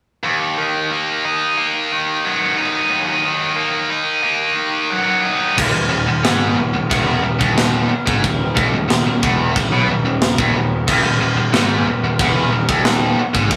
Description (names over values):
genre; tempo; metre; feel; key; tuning
heavy metal; 90 BPM; 4/4; straight; Eb phrygian; A4 = 439 Hz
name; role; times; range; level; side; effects
heavy high-gain guitar; riff; 0.2-13.6 s; Eb2 to Eb4; -20 LUFS; equal; distortion
fuzz picked electric bass; bass; 5.6-13.6 s; Eb1 to Cb2; -23 LUFS; equal; overdrive
tight metal drum kit; drums; 5.6-13.6 s; china cymbal, crash cymbal, kick drum, snare drum; -20 LUFS; equal; none
room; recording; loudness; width
moderate studio ambience, RT60 0.5 s; rough rehearsal-room recording, warm saturation, small room reverb; -17 LUFS; mono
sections
0.2-5.6 A section; 5.6-13.6 B section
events
none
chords
0.2 Ebm; 5.6 N.C.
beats
| 0.24 0.91 1.58 2.25 | 2.92 3.59 4.25 4.92 | 5.58 6.25 6.91 7.58 | 8.24 8.90 9.56 10.22 | 10.88 11.54 12.20 12.86 | 13.52